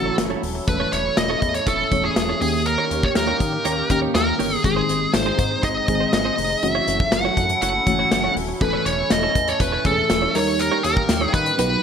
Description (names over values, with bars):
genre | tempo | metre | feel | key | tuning
1980s-style pop | 121 BPM | 4/4 | straight | unclear | A4 = 440 Hz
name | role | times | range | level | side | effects
high-gain lead guitar | melody | 0.0-11.8 s | G#4 to F#5 | -21 LUFS | equal | distortion, digital delay
mellow FM electric piano | accompaniment | 0.0-11.8 s | D#3 to C#5 | -26 LUFS | left 1 dB | chorus, phaser
sweeping resonant pad | sustained chords | 0.0-11.8 s | D#3 to A4 | -30 LUFS | equal | chorus
chorused synth bass | bass | 0.0-11.8 s | D#1 to D#3 | -28 LUFS | equal | none
direct-recorded clean electric guitar | riff | 0.1-11.8 s | A3 to C#5 | -30 LUFS | right 7 dB | wide subtle chorus
modern studio drum kit | drums | 0.2-11.7 s | hi-hat, kick drum, snare drum, tambourine | -24 LUFS | left 1 dB | gated reverb
room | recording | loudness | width
moderate plate reverb, RT60 1.1 s, studio ambience | bright 1980s-style digital production | -18 LUFS | side -7 dB against mid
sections
0.0-11.8 A section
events
none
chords
0.0 F#m7; 0.7 A/E; 2.4 D#7; 4.6 G#; 6.6 F#m7; 8.6 A/E; 10.3 D#7